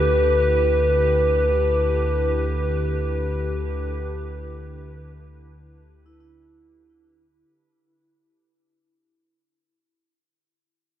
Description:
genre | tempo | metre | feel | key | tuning
ambient | free time | none | none | unclear | A4 = 438 Hz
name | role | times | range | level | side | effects
evolving wavetable pad | sustained chords | 0.0-7.5 s | D3 to B4 | -23 LUFS | equal | chorus, built-in reverb
vibraphone with medium mallets | arpeggios | 0.0-8.5 s | E4 to B4 | -24 LUFS | right 1 dB | analog delay
warm sub bass | bass | 0.0-7.4 s | D2 | -25 LUFS | equal | none
bowed-like drone | drone | 0.2-7.6 s | none | barely audible | none | none
glass harmonica | texture | 0.0-7.5 s | B5 | -47 LUFS | left 2 dB | none
room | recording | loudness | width
wet echo chamber reverb, RT60 2.2 s | echo-heavy mix, cassette tape | -19 LUFS | side -11 dB against mid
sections
0.0-7.5 A section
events
fade-out 0.0-7.5; filter sweep on ambient pad 0.0-7.5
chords
0.0 Em7/D

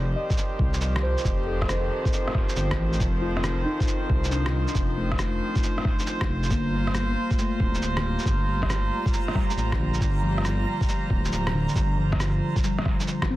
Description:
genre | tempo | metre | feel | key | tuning
future garage | 137 BPM | 4/4 | swing 67% on 16ths | G minor | A4 = 436 Hz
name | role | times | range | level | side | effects
muted felt-like synth keys | accompaniment | 0.0-13.4 s | D3 to Eb5 | -30 LUFS | left 2 dB | chorus, sidechain pumping, analog delay
rich chamber string section | sustained chords | 0.0-13.4 s | Eb3 to Bb5 | -31 LUFS | right 2 dB | sidechain pumping
dark detuned saw bass | bass | 0.0-13.4 s | D1 to C2 | -26 LUFS | equal | sidechain pumping
electronic kick drum | drums | 0.3-13.3 s | none | -26 LUFS | equal | none
electronic shaker and rim click | drums | 0.3-13.3 s | none | -31 LUFS | equal | soft clipping on snare
backwards swelling texture | texture | 7.5-13.4 s | Bb5 | -39 LUFS | right 6 dB | built-in reverb
room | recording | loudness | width
little or no reverb | dense, heavily limited modern master, vinyl crackle | -22 LUFS | side -16 dB against mid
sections
0.0-13.4 A section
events
none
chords
0.0 F13; 6.5 Gm9

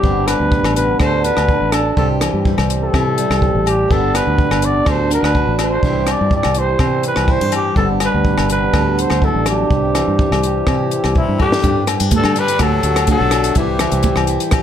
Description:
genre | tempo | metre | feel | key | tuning
highlife guitar band | 124 BPM | 4/4 | straight | G major | A4 = 440 Hz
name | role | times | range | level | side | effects
growling trumpet | melody | 0.0-14.3 s | E4 to D5 | -19 LUFS | left 1 dB | plate reverb
picked plugged-in steel-string acoustic guitar | accompaniment | 0.0-14.6 s | G2 to A4 | -23 LUFS | left 7 dB | plate reverb
cimbalom | arpeggios | 0.0-14.6 s | G3 to G5 | -21 LUFS | right 6 dB | plate reverb
fingered electric bass | bass | 0.0-14.4 s | G1 to C3 | -20 LUFS | equal | none
compact cocktail drum kit | drums | 0.0-14.6 s | hi-hat, kick drum, rim click, snare drum | -19 LUFS | equal | none
agogo bells | percussion | 0.3-14.6 s | none | -26 LUFS | left 8 dB | none
growling tenor saxophone | second line | 11.2-14.3 s | C3 to G3 | -25 LUFS | left 5 dB | plate reverb
congas | percussion | 11.6-14.6 s | none | -24 LUFS | right 6 dB | none
room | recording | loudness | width
moderate studio reverb, RT60 0.7 s | none | -13 LUFS | side -9 dB against mid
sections
0.0-11.6 A section; 11.6-14.6 B section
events
drum fill 11.2-11.6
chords
0.0 G; 1.0 D; 2.0 C; 3.9 G; 4.9 D; 5.8 C; 7.8 G; 8.7 Dadd9; 9.7 C; 11.6 G; 12.6 Dadd9; 13.6 C

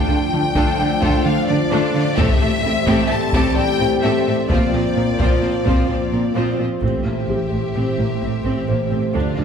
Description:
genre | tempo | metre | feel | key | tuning
cinematic, hybrid orchestral and electronic film score | 129 BPM | 5/4 | straight | A phrygian | A4 = 441 Hz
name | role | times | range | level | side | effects
rich symphonic violin section | melody | 0.0-9.4 s | D5 to A5 | -25 LUFS | left 3 dB | none
clear symphonic violin section | second line | 0.0-9.4 s | D4 to C5 | -29 LUFS | left 2 dB | none
clear symphonic viola section | accompaniment | 0.0-9.4 s | F3 to D4 | -24 LUFS | right 1 dB | none
chorused pulse-width pad | sustained chords | 0.0-9.4 s | E3 to D5 | -24 LUFS | equal | none
dark French horn section | sustained chords | 0.0-6.5 s | F3 to D4 | -24 LUFS | left 3 dB | none
felt-muted upright piano | texture | 0.0-9.4 s | G4 to A5 | -31 LUFS | left 2 dB | tape echo
rich symphonic cello section | bass | 0.1-9.4 s | A2 to D3 | -23 LUFS | right 1 dB | none
taiko ensemble | drums | 0.6-7.7 s | none | -22 LUFS | equal | none
dark studio double bass section | bass | 6.8-9.4 s | A1 to D2 | -23 LUFS | right 3 dB | none
room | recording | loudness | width
wet scoring stage reverb, RT60 1.6 s | heard from further back in the room | -16 LUFS | side -7 dB against mid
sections
0.0-6.8 A section; 6.8-9.4 B section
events
none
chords
0.0 Dm; 2.2 Am7; 4.5 Bbadd9; 6.8 Am7

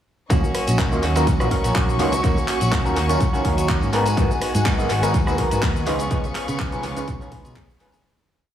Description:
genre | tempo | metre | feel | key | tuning
filtered disco house | 124 BPM | 4/4 | swing 54% on 16ths | Eb minor | A4 = 440 Hz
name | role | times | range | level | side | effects
auto-wah clav | accompaniment | 0.3-7.9 s | Gb3 to F5 | -25 LUFS | equal | overdrive, phaser, sidechain pumping, tape echo
dark studio string section | sustained chords | 0.3-8.0 s | Gb3 to Db6 | -29 LUFS | left 1 dB | sidechain pumping
direct-recorded clean electric guitar | riff | 0.3-8.1 s | F3 to Ab4 | -27 LUFS | left 1 dB | sidechain pumping
fingered electric bass | bass | 0.3-7.5 s | Ab1 to Db3 | -23 LUFS | equal | sidechain pumping
electronic kick drum | drums | 0.3-7.7 s | none | -22 LUFS | equal | none
house drum kit | drums | 0.3-8.0 s | cabasa, handclaps, hi-hat, rim click | -28 LUFS | equal | sidechain pumping on hats, sidechain pumping on perc, tape echo
tambourine | percussion | 0.3-8.0 s | none | -39 LUFS | right 4 dB | sidechain pumping on perc, tape echo
room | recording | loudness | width
light reverb | echo-heavy mix, small room reverb | -18 LUFS | side -10 dB against mid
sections
0.3-8.0 drop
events
drop 0.3-8.0; fade-out 5.5-8.0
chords
0.3 Ebm7; 3.9 Abm7; 5.9 Db7

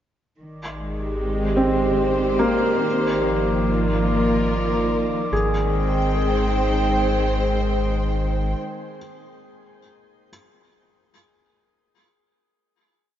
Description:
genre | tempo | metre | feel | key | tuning
ambient | 73 BPM | 3/4 | straight | Ab lydian | A4 = 440 Hz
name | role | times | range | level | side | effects
warm studio string section | sustained chords | 0.4-8.6 s | Eb3 to G5 | -22 LUFS | right 1 dB | shimmer reverb
round analog bass | bass | 0.4-8.5 s | Ab1 | -25 LUFS | equal | none
glass harmonica | texture | 0.4-5.3 s | D5 to D6 | -33 LUFS | left 2 dB | shimmer reverb
felt-muted upright piano | arpeggios | 1.6-10.3 s | Bb3 to Ab4 | -25 LUFS | equal | diffuse ambient delay, shimmer reverb
room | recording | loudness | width
wet plate reverb, RT60 2.8 s | dreamy mix soaked in reverb, nothing above 7.5 kHz | -19 LUFS | side -10 dB against mid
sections
0.4-5.3 A section; 5.3-7.8 final chord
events
fade-in on glass harmonica 0.4-5.3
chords
0.4 Abmaj7; 2.9 Ebsus2/Ab; 5.3 Abmaj7

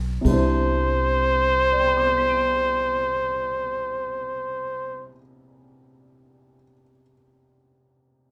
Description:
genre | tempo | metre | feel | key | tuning
jazz ballad | 42 BPM | 4/4 | swing 67% on 8ths | C major | A4 = 440 Hz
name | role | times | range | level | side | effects
warm upright piano | accompaniment | 0.0-8.3 s | C3 to D7 | -30 LUFS | equal | none
upright bass | bass | 0.0-5.1 s | B1 to C2 | -30 LUFS | equal | none
jazz brush drum kit | drums | 0.2-0.7 s | kick drum, ride cymbal | -33 LUFS | equal | none
warm trumpet | melody | 0.3-5.1 s | C5 | -24 LUFS | equal | none
room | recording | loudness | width
moderate small room reverb, RT60 0.5 s | band playing live in one room | -22 LUFS | mono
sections
0.3-6.0 A section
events
none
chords
0.3 Cmaj9

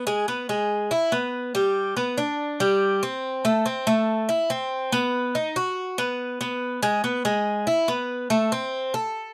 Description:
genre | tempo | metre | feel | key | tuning
latin | 142 BPM | 4/4 | straight | A minor | A4 = 440 Hz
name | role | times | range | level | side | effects
Cuban tres | solo | 0.0-9.3 s | G3 to A4 | -24 LUFS | equal | none
room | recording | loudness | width
light reverb | dry, close 1970s-style studio recording | -24 LUFS | mono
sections
0.0-8.3 A section; 8.3-9.3 B section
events
none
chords
none

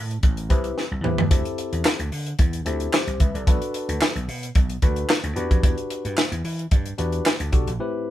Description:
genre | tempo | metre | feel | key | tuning
early-eighties boogie funk | 111 BPM | 4/4 | straight | unclear | A4 = 440 Hz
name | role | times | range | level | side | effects
vintage slap bass | bass | 0.0-7.8 s | A1 to E3 | -27 LUFS | equal | none
tight funk drum kit | drums | 0.1-7.8 s | handclaps, hi-hat, kick drum, snare drum, toms | -20 LUFS | equal | none
barky tine electric piano | accompaniment | 0.5-8.1 s | A2 to E5 | -28 LUFS | left 3 dB | none
room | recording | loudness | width
light reverb | band playing live in one room | -20 LUFS | side -13 dB against mid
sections
0.0-8.1 A section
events
drum fill 0.8-1.3; break 7.8-8.1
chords
0.0 Am7; 1.3 D9sus4; 3.5 Bm7; 5.4 Em9

